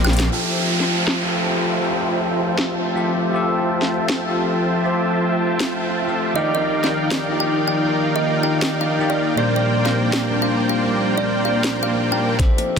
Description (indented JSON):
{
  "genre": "future bass",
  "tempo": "159 BPM",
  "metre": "4/4",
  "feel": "swing 54% on 16ths, half-time",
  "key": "F major",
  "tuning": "A4 = 439 Hz",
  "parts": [
    { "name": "kalimba", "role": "melody", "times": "0.0-0.3, 6.4-12.8 s", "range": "C5 to G5", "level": "-25 LUFS", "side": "right 2 dB", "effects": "sidechain pumping, tape echo" },
    { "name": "dense compressed supersaw", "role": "riff", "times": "0.0-12.6 s", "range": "Bb3 to C6", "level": "-22 LUFS", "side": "right 1 dB", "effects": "sidechain pumping, low-pass filter, tape echo" },
    { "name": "trap drum kit", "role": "drums", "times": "0.0-12.7 s", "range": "hi-hat, snare drum, woodblock", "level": "-27 LUFS", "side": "equal", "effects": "low-pass filter on hats, low-pass filter on snare, low-pass filter on perc" },
    { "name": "bell-like tine electric piano", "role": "accompaniment", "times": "0.3-12.8 s", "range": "Bb2 to E5", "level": "-23 LUFS", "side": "left 2 dB", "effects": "phaser, sidechain pumping, tape echo" },
    { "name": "airy breathy pad", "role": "sustained chords", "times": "0.3-12.8 s", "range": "Eb3 to E5", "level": "-27 LUFS", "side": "equal", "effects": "chorus, sidechain pumping" },
    { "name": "downlifter", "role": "sound effects", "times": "0.3-3.3 s", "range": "none", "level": "-24 LUFS", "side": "right 1 dB", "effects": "none" },
    { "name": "electronic kick drum", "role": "drums", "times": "12.4-12.8 s", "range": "none", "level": "-17 LUFS", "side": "equal", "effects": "none" }
  ],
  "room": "moderate huge ambient reverb, RT60 4.2 s",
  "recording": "dense, heavily limited modern master",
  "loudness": "-17 LUFS",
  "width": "side -6 dB against mid",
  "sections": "0.3-12.4 A section",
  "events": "drum fill 0.0-0.3, 12.4-12.8; filter sweep on supersaw synth 0.3-12.4",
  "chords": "0.3 Fmaj9; 6.4 Ebmaj9; 9.4 Bb69"
}